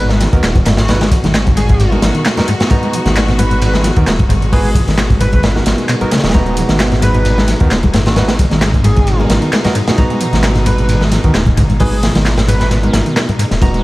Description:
breakbeat, breaks; 132 BPM; 4/4; swing 54% on 16ths; G# minor; A4 = 440 Hz
airy dreamy lead; melody; 0.0-12.7 s; F#4 to B4; -23 LUFS; equal; chorus, AM radio sound, vintage 12-bit sampler grit, analog delay
clear symphonic string section; sustained chords; 0.0-13.8 s; B2 to F#4; -23 LUFS; left 1 dB; vintage 12-bit sampler grit, sidechain pumping
screaming distorted acid line; riff; 0.0-13.8 s; G#1 to G#3; -18 LUFS; equal; distortion, chorus
barky tine electric piano; stabs; 0.0-13.8 s; B3 to A#5; -21 LUFS; right 2 dB; vintage 12-bit sampler grit, analog delay
phased detuned saw bass; bass; 0.0-13.8 s; D#1 to D#2; -16 LUFS; equal; phaser
sub drop; sound effects; 0.0-0.9 s; barely audible
crunchy breakbeat drum kit; drums; 0.1-13.7 s; hi-hat, kick drum, ride cymbal, snare drum; -15 LUFS; equal; analog delay
congas; percussion; 0.1-13.7 s; -22 LUFS; left 2 dB
punchy analog drum machine; drums; 0.2-13.8 s; handclaps, hi-hat, ride cymbal; -24 LUFS; equal; overdrive, analog delay
light reverb, small room ambience; echo-heavy mix, vinyl crackle; -10 LUFS; side -19 dB against mid
0.0-13.8 A section
impact 0.0-0.9; kick drops out 12.7-13.6
0.0 G#m7

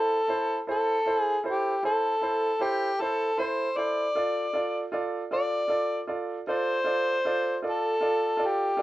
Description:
blues; 52 BPM (dotted quarters); 12/8; straight; A minor; A4 = 444 Hz
overdriven harmonica; melody; 0.0-8.8 s; G4 to D5; -26 LUFS; left 1 dB
clear grand piano; accompaniment; 0.0-8.8 s; E4 to D5; -30 LUFS; right 3 dB
moderate small room reverb, RT60 0.5 s; rough home demo mix; -24 LUFS; side -16 dB against mid
0.0-8.8 A section
0.0 Am; 4.1 Dm

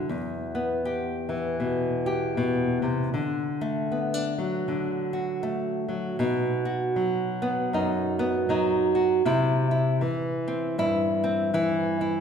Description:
folk; 79 BPM; 4/4; swing 60% on 8ths; A4 = 440 Hz
nylon-string guitar; solo; 0.0-12.2 s; E2 to G4; -24 LUFS; equal
wet recital hall reverb, RT60 1.5 s; recorded in a church or concert hall; -24 LUFS; side -7 dB against mid
0.0-6.2 A section; 6.2-12.2 B section
0.1 Em; 3.1 D; 6.2 B; 9.2 C

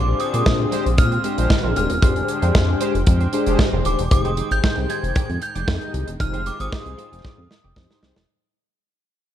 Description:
early-eighties boogie funk; 115 BPM; 4/4; straight; F dorian; A4 = 440 Hz
synth chime; melody; 0.0-8.0 s; D6 to Ab6; -27 LUFS; right 1 dB; ensemble chorus, tremolo, slapback echo
brassy analog pad; sustained chords; 0.0-8.3 s; D3 to G5; -33 LUFS; equal; chorus
clean electric guitar; riff; 0.0-8.2 s; Ab3 to D5; -32 LUFS; right 8 dB; analog chorus
chorused synth bass; bass; 0.0-8.3 s; Eb1 to Bb2; -22 LUFS; equal
mellow synth brass; accompaniment; 0.1-8.2 s; D4 to Eb5; -26 LUFS; left 4 dB; chorus
modern studio drum kit; drums; 0.2-8.3 s; hi-hat, kick drum, snare drum; -20 LUFS; equal
analog synth brass; second line; 0.7-3.8 s; Ab3 to C5; -28 LUFS; equal; chorus
light reverb; dark, warm production; -17 LUFS; side -11 dB against mid
0.0-4.1 A section; 4.1-8.3 B section
fade-out 4.1-8.3; drum fill 7.2-8.3
0.0 Bb13; 4.1 Fm9

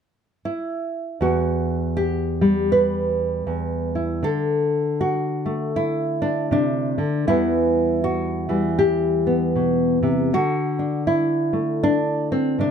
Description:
folk, solo fingerstyle acoustic guitar; 79 BPM; 4/4; swing 60% on 8ths; E minor; A4 = 443 Hz
nylon-string guitar; solo; 0.5-12.7 s; E2 to B4; -19 LUFS; equal
light reverb; dark, warm production; -19 LUFS; side -7 dB against mid
0.0-1.2 A section; 1.2-12.7 B section
0.0 N.C.; 1.2 Emadd9; 4.2 D; 7.3 Emadd9; 10.3 D

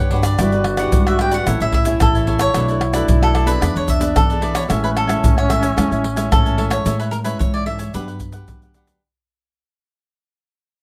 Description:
samba and choro; 111 BPM; 4/4; straight; A major; A4 = 442 Hz
cavaquinho; melody; 0.0-8.7 s; A4 to G5; -24 LUFS; equal; plate reverb
warm duduk; second line; 0.0-6.8 s; C#4 to G4; -26 LUFS; equal; slapback echo
cavaquinho; accompaniment; 0.0-9.0 s; D4 to G#5; -29 LUFS; equal
nylon-string guitar; accompaniment; 0.0-9.0 s; G2 to B4; -28 LUFS; equal
upright bass; bass; 0.0-8.9 s; G1 to E3; -24 LUFS; equal
pandeiro, tube shaker, tamborim and surdo; percussion; 0.1-9.0 s; -21 LUFS; equal
light reverb; close, detailed microphones; -17 LUFS; mono
0.0-6.9 A section; 6.9-9.0 B section
fade-out 6.9-9.0
0.4 Em7/G; 1.5 Amaj7; 2.5 Bm7; 3.6 E7; 4.7 Amaj7; 7.9 Gmaj7

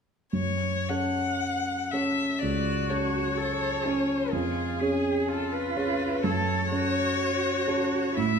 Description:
classical, slow romantic movement for piano quartet; 51-64 BPM; 4/4; rubato; F# minor; A4 = 440 Hz
rich violin; melody; 0.3-8.4 s; G#4 to F#5; -30 LUFS; left 6 dB
dark concert grand piano; accompaniment; 0.3-8.4 s; C#2 to C#5; -28 LUFS; right 1 dB
warm cello; second line; 2.4-8.4 s; C#4 to A4; -30 LUFS; right 4 dB
wet stone room reverb, RT60 1.3 s; minimal, uncompressed stereo recording; -25 LUFS; side -6 dB against mid
0.3-8.4 A section
0.3 F#m; 4.3 C#/E#; 6.2 F#m

